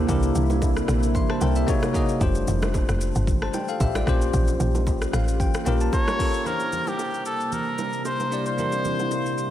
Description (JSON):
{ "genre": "amapiano", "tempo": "113 BPM", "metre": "4/4", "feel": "swing 55% on 16ths", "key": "unclear", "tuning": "A4 = 441 Hz", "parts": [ { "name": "bell-like tine electric piano", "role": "accompaniment", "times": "0.0-9.5 s", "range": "A3 to C6", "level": "-28 LUFS", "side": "left 3 dB", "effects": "fast stereo tremolo" }, { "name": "deep dark ambient pad", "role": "sustained chords", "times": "0.0-9.5 s", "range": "C3 to A4", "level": "-30 LUFS", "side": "right 2 dB", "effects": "chorus, built-in reverb, sidechain pumping" }, { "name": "woody log drum bass", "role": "bass", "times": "0.0-5.9 s", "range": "F1 to C2", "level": "-23 LUFS", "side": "equal", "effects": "none" }, { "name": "deep house drum kit", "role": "drums", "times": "0.1-9.5 s", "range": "hi-hat, kick drum, rim click, shaker", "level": "-27 LUFS", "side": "equal", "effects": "overdrive" }, { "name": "congas and bongos", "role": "percussion", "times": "0.1-9.2 s", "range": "none", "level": "-34 LUFS", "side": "right 4 dB", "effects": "none" }, { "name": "trumpet with cup mute", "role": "melody", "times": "5.9-9.5 s", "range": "G4 to Db5", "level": "-26 LUFS", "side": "equal", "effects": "diffuse ambient delay" } ], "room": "moderate lush hall reverb, RT60 1.8 s, digital ambience", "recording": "dreamy mix soaked in reverb", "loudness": "-21 LUFS", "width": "side -12 dB against mid", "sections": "0.0-6.5 A section; 6.5-9.5 B section", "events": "drop 0.0-6.5; tine electric piano fill 4.9-6.5", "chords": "0.0 C7; 1.7 Gb69; 2.2 F69; 4.1 Bbm6; 6.5 C7" }